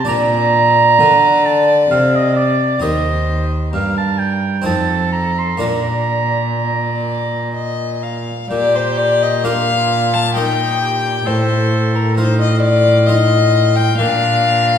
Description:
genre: classical, baroque-style sonata movement with continuo.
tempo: 66 BPM.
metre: 3/4.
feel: rubato.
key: Bb major.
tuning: A4 = 440 Hz.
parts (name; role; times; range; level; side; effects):
warm violin; melody; 0.0-14.8 s; A4 to A5; -17 LUFS; left 4 dB; none.
warm oboe; second line; 0.0-14.7 s; D4 to C6; -18 LUFS; right 4 dB; none.
harpsichord; accompaniment; 0.0-14.8 s; Eb2 to D5; -24 LUFS; equal; none.
rich cello; bass; 0.0-14.8 s; Eb2 to D3; -18 LUFS; equal; none.
room: wet recital hall reverb, RT60 1.4 s.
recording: heard from further back in the room.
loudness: -13 LUFS.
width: side -8 dB against mid.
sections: 0.0-8.5 A section; 8.5-14.8 B section.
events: none.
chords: 0.1 Bb; 2.8 Eb; 4.7 F7; 5.6 Bb; 10.4 Eb/Bb; 11.3 F7/A; 14.0 Bb.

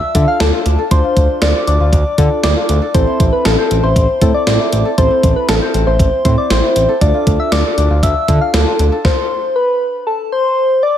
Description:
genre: synth-pop.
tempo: 118 BPM.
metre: 4/4.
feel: straight.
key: unclear.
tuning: A4 = 440 Hz.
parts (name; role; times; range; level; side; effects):
soft struck synth lead; melody; 0.0-11.0 s; A4 to F5; -16 LUFS; left 2 dB; chorus.
kora; arpeggios; 0.0-10.5 s; C4 to D5; -26 LUFS; left 2 dB; ping-pong delay.
soft electric-piano-like synth keys; accompaniment; 0.1-9.0 s; C4 to C5; -21 LUFS; equal; chorus.
smooth synth bass; bass; 0.1-8.9 s; A1 to D3; -15 LUFS; equal; none.
gated 80s digital drum machine; drums; 0.1-9.2 s; hi-hat, kick drum, snare drum; -16 LUFS; equal; gated reverb, gated reverb snare.
room: light reverb, digital ambience.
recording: none.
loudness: -11 LUFS.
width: side -10 dB against mid.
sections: 0.0-11.0 A section.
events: none.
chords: 0.0 Dm; 2.9 Am; 7.0 Dm.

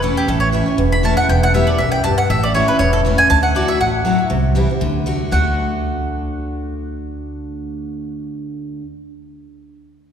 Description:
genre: bluegrass.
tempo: 238 BPM.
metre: 4/4.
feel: swing 53% on 8ths.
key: D major.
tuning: A4 = 441 Hz.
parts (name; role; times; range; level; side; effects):
mandolin; melody; 0.0-8.8 s; G4 to B5; -19 LUFS; right 1 dB; none.
picked steel-string acoustic guitar; accompaniment; 0.0-8.9 s; E2 to F#4; -20 LUFS; left 1 dB; none.
upright bass; bass; 0.0-8.8 s; E1 to D2; -20 LUFS; equal; none.
room: wet church reverb, RT60 3.4 s.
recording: recorded in a church or concert hall.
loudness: -14 LUFS.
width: side -8 dB against mid.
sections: 0.0-4.3 A section; 4.3-5.3 B section; 5.3-7.3 C section.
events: none.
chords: 0.0 A; 1.3 Em; 2.3 A; 3.3 Dadd9; 4.3 C; 4.8 D.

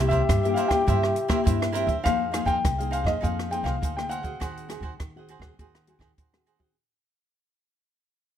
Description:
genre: samba and choro.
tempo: 102 BPM.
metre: 4/4.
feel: straight.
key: F minor.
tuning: A4 = 442 Hz.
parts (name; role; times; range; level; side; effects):
warm grand piano; melody; 0.0-6.1 s; Eb5 to G5; -28 LUFS; left 2 dB; none.
breathy trombone; second line; 0.0-1.9 s; C4 to G4; -28 LUFS; left 3 dB; none.
cavaquinho; accompaniment; 0.0-6.8 s; Eb4 to Gb5; -32 LUFS; right 5 dB; none.
nylon-string guitar; accompaniment; 0.0-6.7 s; G2 to Ab4; -31 LUFS; left 5 dB; none.
upright bass; bass; 0.0-6.7 s; C2 to G2; -29 LUFS; equal; none.
compact cocktail drum kit; drums; 0.1-6.7 s; hi-hat, kick drum, rim click; -28 LUFS; right 1 dB; none.
room: light reverb.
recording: minimal, uncompressed stereo recording.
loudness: -22 LUFS.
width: side -10 dB against mid.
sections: 0.0-2.0 A section; 2.0-6.8 B section.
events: fade-out 2.0-6.8.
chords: 0.0 C7; 2.0 Fm7; 4.4 Ab7/Eb.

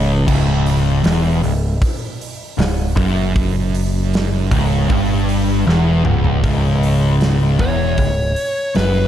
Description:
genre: stoner and doom metal.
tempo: 78 BPM.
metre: 4/4.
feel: straight.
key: unclear.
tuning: A4 = 440 Hz.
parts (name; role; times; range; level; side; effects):
thick fuzz guitar; riff; 0.0-9.1 s; C#2 to G2; -16 LUFS; equal; distortion.
growling picked electric bass; bass; 0.0-9.1 s; C#1 to G1; -19 LUFS; equal; overdrive.
big rock drum kit; drums; 0.3-8.9 s; crash cymbal, hi-hat, kick drum, snare drum, toms; -21 LUFS; equal; none.
fuzz lead guitar; melody; 7.6-9.1 s; B4 to C#5; -20 LUFS; equal; distortion, slapback echo.
room: light reverb.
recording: dark, warm production.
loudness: -14 LUFS.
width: side -11 dB against mid.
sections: 0.0-6.4 A section; 6.4-9.1 B section.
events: drum fill 5.7-6.4; lead electric guitar solo 6.4-9.1.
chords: 0.0 C#m.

